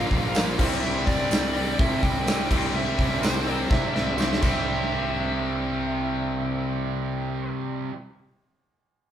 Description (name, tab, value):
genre	classic rock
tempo	125 BPM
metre	4/4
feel	straight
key	C mixolydian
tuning	A4 = 442 Hz
part	dark smooth lead guitar	melody	0.0-7.5 s	C5 to G5	-32 LUFS	right 1 dB	overdrive
part	warm upright piano	accompaniment	0.0-7.5 s	E4 to F5	-37 LUFS	right 2 dB	none
part	cranked stack guitar	riff	0.0-7.9 s	Bb2 to C4	-30 LUFS	left 6 dB	overdrive
part	distorted electric guitar	riff	0.0-8.0 s	Bb2 to G4	-30 LUFS	right 6 dB	distortion
part	fuzz picked electric bass	bass	0.0-7.5 s	Bb1 to C3	-31 LUFS	equal	overdrive
part	huge arena drum kit	drums	0.1-4.5 s	crash cymbal, hi-hat, kick drum, snare drum	-25 LUFS	equal	none
part	tambourine	percussion	0.3-4.9 s	none	-40 LUFS	right 7 dB	none
room	moderate large studio reverb, RT60 0.9 s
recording	band playing live in one room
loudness	-22 LUFS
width	side -10 dB against mid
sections	0.0-4.7 A section; 4.7-8.5 B section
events	drum fill 3.7-4.7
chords	0.0 Bb; 0.6 C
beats	0.35 | 0.83 1.31 1.79 2.27 | 2.75 3.23 3.71 4.19 | 4.67 5.15 5.63 6.11 | 6.59 7.07 7.55